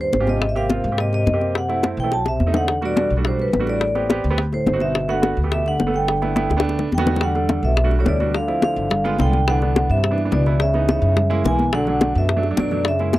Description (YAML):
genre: Afro-Cuban jazz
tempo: 212 BPM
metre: 4/4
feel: straight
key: G major, E minor from 7.2 s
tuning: A4 = 440 Hz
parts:
  - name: vibraphone with medium mallets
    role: melody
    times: 0.0-13.2 s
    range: B4 to A5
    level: -23 LUFS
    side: right 1 dB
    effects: none
  - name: breathy trombone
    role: second line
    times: 0.0-13.2 s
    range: G2 to F#3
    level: -27 LUFS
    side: left 4 dB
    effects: none
  - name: upright bass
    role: bass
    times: 0.0-13.2 s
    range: G1 to Ab2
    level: -22 LUFS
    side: equal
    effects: none
  - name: bongos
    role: percussion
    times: 0.1-13.2 s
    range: none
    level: -24 LUFS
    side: left 5 dB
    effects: none
  - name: congas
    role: percussion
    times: 0.1-13.2 s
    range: none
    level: -24 LUFS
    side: left 1 dB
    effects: none
  - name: warm concert grand piano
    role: accompaniment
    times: 0.2-13.2 s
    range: E3 to A4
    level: -25 LUFS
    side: right 4 dB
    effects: none
room: little or no reverb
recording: dry, close 1970s-style studio recording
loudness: -17 LUFS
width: side -16 dB against mid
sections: 0.0-7.2 A section; 7.2-13.2 B section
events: drum fill 2.1-2.7, 6.5-7.2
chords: 0.4 Abmaj7; 1.6 F#m7b5; 2.1 B7b9; 2.7 Em11; 3.8 Am7; 4.4 D7b9; 4.9 Gmaj7; 7.2 Em11; 8.3 Dm7; 8.9 G7b9; 9.5 Cmaj9; 10.6 C#m7; 11.2 F#7; 11.7 Bm7